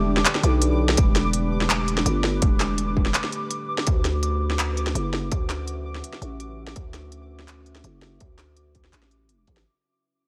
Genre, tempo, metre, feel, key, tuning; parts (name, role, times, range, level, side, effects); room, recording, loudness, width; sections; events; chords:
half-time drum and bass; 166 BPM; 4/4; half-time; A4 = 442 Hz
deep dark ambient pad; sustained chords; 0.0-9.7 s; A3 to E5; -34 LUFS; equal; chorus, built-in reverb, sidechain pumping
growling 808-style bass; bass; 0.0-9.6 s; E1 to D2; -27 LUFS; equal
pulsing gated texture; texture; 0.0-9.7 s; D6; -36 LUFS; equal; chorus, built-in reverb
industrial drum kit; drums; 0.2-9.6 s; handclaps, hi-hat, snare drum; -27 LUFS; equal
electronic kick drum; drums; 1.0-9.5 s; -24 LUFS; equal; distortion
light reverb; -23 LUFS; mono
0.0-9.7 A section
fade-out 0.0-9.7
0.0 Em; 3.9 D